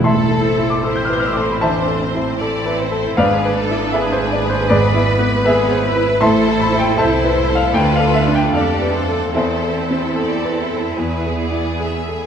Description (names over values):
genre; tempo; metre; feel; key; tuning
classical, romantic movement for piano and orchestra; 77 BPM; 4/4; uneven beats, rubato; A minor; A4 = 440 Hz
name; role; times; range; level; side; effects
clear baby grand piano; melody; 0.0-12.3 s; D2 to G6; -17 LUFS; left 1 dB; none
clear studio violin section; melody; 0.0-12.3 s; G#4 to G#5; -28 LUFS; left 5 dB; none
rich studio violin section; second line; 0.0-12.3 s; G#4 to D5; -25 LUFS; left 2 dB; none
warm studio viola section; accompaniment; 0.0-12.3 s; B3 to E4; -25 LUFS; right 3 dB; none
rich studio cello section; bass; 0.0-12.2 s; C4 to B4; -24 LUFS; right 2 dB; none
rich studio double bass section; bass; 0.0-12.3 s; G#1 to F2; -24 LUFS; right 4 dB; none
room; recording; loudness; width
moderate scoring stage reverb, RT60 1.8 s; none; -14 LUFS; side -8 dB against mid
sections
0.0-12.3 A section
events
none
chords
0.0 Am; 3.2 E7/G#; 6.2 Am; 7.7 Dm; 9.3 Am/E; 11.0 E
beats
| 0.03 0.85 1.63 2.40 | 3.18 3.95 4.70 5.46 | 6.22 6.99 7.75 8.54 | 9.35 10.17 10.99 11.80